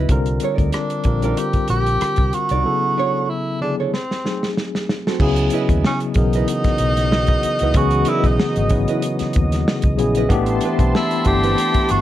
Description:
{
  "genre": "R&B, neo-soul",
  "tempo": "94 BPM",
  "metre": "4/4",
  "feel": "swing 55% on 16ths",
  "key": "unclear",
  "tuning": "A4 = 438 Hz",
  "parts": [
    { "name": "nylon-string guitar", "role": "second line", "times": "0.0-11.6 s", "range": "B#3 to D#5", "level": "-25 LUFS", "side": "right 9 dB", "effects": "none" },
    { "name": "tine electric piano", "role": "accompaniment", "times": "0.0-12.0 s", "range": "C#3 to B4", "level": "-21 LUFS", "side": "left 2 dB", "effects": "medium stereo tremolo" },
    { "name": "vintage muted fingered electric bass", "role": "bass", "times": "0.0-12.0 s", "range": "G1 to D#2", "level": "-21 LUFS", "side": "equal", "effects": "none" },
    { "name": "warm soul drum kit", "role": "drums", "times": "0.1-12.0 s", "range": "crash cymbal, hi-hat, kick drum, rim click, snare drum", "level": "-21 LUFS", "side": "equal", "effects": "none" },
    { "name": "warm tenor saxophone", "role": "melody", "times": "0.7-12.0 s", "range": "B#3 to G4", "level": "-21 LUFS", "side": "right 1 dB", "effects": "slapback echo" },
    { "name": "warm analog pad", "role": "sustained chords", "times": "5.2-12.0 s", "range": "D#5 to D#6", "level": "-30 LUFS", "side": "left 1 dB", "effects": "chorus" },
    { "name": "mellow horn section", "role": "stabs", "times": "6.5-12.0 s", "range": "E3 to F#4", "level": "-30 LUFS", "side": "right 3 dB", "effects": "slapback echo" }
  ],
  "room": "light reverb",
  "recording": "none",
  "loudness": "-16 LUFS",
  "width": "side -13 dB against mid",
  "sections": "0.0-5.2 A section; 5.2-12.0 B section",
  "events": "break 2.6-5.2; drum fill 3.9-5.2",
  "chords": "0.1 C7sus2; 2.6 Bm9; 3.9 G#7b9; 5.2 C#m9; 10.3 Am9"
}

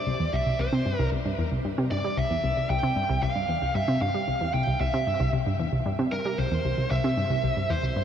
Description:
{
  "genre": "ambient, sequencer-driven space music",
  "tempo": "114 BPM",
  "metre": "4/4",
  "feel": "straight",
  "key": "unclear",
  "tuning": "A4 = 440 Hz",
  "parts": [
    { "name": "bluesy overdriven lead guitar", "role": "melody", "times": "0.0-8.0 s", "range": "Bb4 to G5", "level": "-28 LUFS", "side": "right 1 dB", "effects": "distortion, shimmer reverb, ping-pong delay" },
    { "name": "analog pluck", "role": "riff", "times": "0.0-8.0 s", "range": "C2 to G3", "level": "-26 LUFS", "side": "equal", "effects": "chorus, ping-pong delay" }
  ],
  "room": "wet huge ambient reverb, RT60 8.5 s",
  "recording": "cassette tape",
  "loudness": "-24 LUFS",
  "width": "side -9 dB against mid",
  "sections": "0.0-8.0 A section",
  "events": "none",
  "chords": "0.0 C"
}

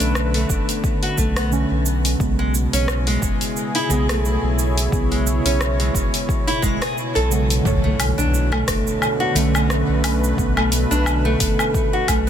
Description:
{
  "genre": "organic downtempo",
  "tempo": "88 BPM",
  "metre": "4/4",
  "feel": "swing 56% on 16ths",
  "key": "B dorian",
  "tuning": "A4 = 440 Hz",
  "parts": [
    { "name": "muted felt-like synth keys", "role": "accompaniment", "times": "0.0-12.3 s", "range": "C#3 to C#5", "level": "-26 LUFS", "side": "right 3 dB", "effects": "chorus, phaser, sidechain pumping, digital delay" },
    { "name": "warm analog pad", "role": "sustained chords", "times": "0.0-12.3 s", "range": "B2 to C#5", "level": "-26 LUFS", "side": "left 1 dB", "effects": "chorus, sidechain pumping" },
    { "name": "nylon-string guitar", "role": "arpeggios", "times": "0.0-12.3 s", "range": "G#3 to A4", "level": "-24 LUFS", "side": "right 1 dB", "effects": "digital delay" },
    { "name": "warm sub bass", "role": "bass", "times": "0.0-12.3 s", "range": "F#1 to B1", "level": "-21 LUFS", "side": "equal", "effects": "sidechain pumping" },
    { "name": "deep house drum kit", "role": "drums", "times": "0.0-12.2 s", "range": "cabasa, hi-hat, rim click, woodblock", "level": "-25 LUFS", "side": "equal", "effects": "soft clipping on snare" },
    { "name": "electronic kick drum", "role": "drums", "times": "0.5-12.2 s", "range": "none", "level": "-23 LUFS", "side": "equal", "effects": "overdrive" },
    { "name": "impact", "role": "sound effects", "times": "7.6-10.4 s", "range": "none", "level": "-28 LUFS", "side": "left 1 dB", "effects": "none" }
  ],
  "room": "light reverb",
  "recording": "dense, heavily limited modern master",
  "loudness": "-17 LUFS",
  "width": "side -9 dB against mid",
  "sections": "0.0-7.7 A section; 7.7-12.3 B section",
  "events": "kick drops out 7.0-7.7; impact 7.7-10.4",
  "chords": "0.0 Bm7; 2.2 Amaj7 (rootless); 7.7 Bm7"
}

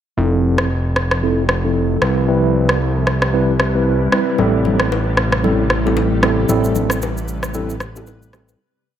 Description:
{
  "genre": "afrobeats",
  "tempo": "114 BPM",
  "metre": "4/4",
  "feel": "swing 58% on 16ths",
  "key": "unclear",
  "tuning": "A4 = 439 Hz",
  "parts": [
    { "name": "mellow tine electric piano", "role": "accompaniment", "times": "0.2-8.6 s", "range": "F3 to B4", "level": "-18 LUFS", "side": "right 1 dB", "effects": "medium stereo tremolo, low-pass filter" },
    { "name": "granular cloud pad", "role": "sustained chords", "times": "1.2-8.6 s", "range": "C3 to B4", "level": "-25 LUFS", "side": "left 1 dB", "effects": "built-in reverb, low-pass filter" },
    { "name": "fat analog bass", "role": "bass", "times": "0.2-8.6 s", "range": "F1 to C2", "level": "-19 LUFS", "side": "equal", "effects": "none" },
    { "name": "electronic rim click and shaker", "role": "drums", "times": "0.6-8.6 s", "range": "none", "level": "-20 LUFS", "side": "equal", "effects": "none" },
    { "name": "congas and bongos", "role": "percussion", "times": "4.4-8.6 s", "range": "none", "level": "-26 LUFS", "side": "left 7 dB", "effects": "none" }
  ],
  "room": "light reverb, digital ambience",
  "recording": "none",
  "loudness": "-14 LUFS",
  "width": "side -10 dB against mid",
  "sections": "0.2-8.6 breakdown",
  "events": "filter sweep 0.2-8.6; fade-out 6.5-8.6",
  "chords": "0.2 Fmaj7; 2.0 Cmaj7; 4.4 Am7"
}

